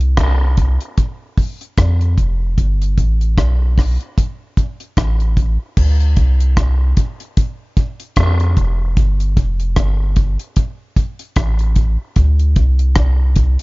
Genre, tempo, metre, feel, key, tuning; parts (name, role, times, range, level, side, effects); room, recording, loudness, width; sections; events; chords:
dub reggae; 75 BPM; 4/4; swing 57% on 16ths; A4 = 437 Hz
soft dub sub bass; bass; 0.0-13.6 s; F1 to F2; -14 LUFS; equal
deep reggae drum kit; drums; 0.0-13.6 s; crash cymbal, hi-hat, kick drum, rim click; -16 LUFS; equal
little or no reverb; dark, warm production, nothing above 7.5 kHz; -14 LUFS; side -23 dB against mid
0.0-5.8 A section; 5.8-13.6 B section